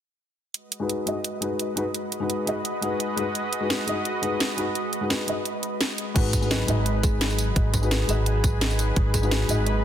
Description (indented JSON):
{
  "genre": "liquid drum and bass",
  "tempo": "171 BPM",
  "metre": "4/4",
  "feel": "straight",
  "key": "G# minor",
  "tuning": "A4 = 440 Hz",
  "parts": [
    { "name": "lush unison pad", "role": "sustained chords", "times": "0.5-9.8 s", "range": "F#3 to D#5", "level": "-30 LUFS", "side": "equal", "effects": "chorus, sidechain pumping" },
    { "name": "drum and bass drum kit", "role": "drums", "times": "0.5-9.7 s", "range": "crash cymbal, hi-hat, rim click, snare drum, tambourine", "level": "-28 LUFS", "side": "right 1 dB", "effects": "overdrive" },
    { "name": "felt-muted upright piano", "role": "accompaniment", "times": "0.8-9.6 s", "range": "G#3 to D#5", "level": "-28 LUFS", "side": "left 2 dB", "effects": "vintage 12-bit sampler grit, low-pass filter, ping-pong delay" },
    { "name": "kalimba", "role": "arpeggios", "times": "6.2-9.8 s", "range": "G#4 to F#5", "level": "-33 LUFS", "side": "left 2 dB", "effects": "digital delay" },
    { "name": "upright bass", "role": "bass", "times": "6.2-9.8 s", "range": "G#1", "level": "-24 LUFS", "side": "equal", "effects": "tube saturation" },
    { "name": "electronic kick drum", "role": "drums", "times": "6.2-9.2 s", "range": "none", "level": "-23 LUFS", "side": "equal", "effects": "overdrive" }
  ],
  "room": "light reverb, small room ambience",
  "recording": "dense, heavily limited modern master",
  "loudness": "-22 LUFS",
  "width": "side -10 dB against mid",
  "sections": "0.5-6.2 A section; 6.2-9.8 B section",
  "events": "filter sweep on felt piano 0.5-6.2; drop 6.2-9.8",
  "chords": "0.5 G#m7",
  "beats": "| 0.54 0.89 1.24 1.59 | 1.95 2.30 2.65 3.00 | 3.35 3.70 4.05 4.40 | 4.75 5.10 5.46 5.81 | 6.16 6.51 6.86 7.21 | 7.56 7.91 8.26 8.61 | 8.96 9.31 9.66"
}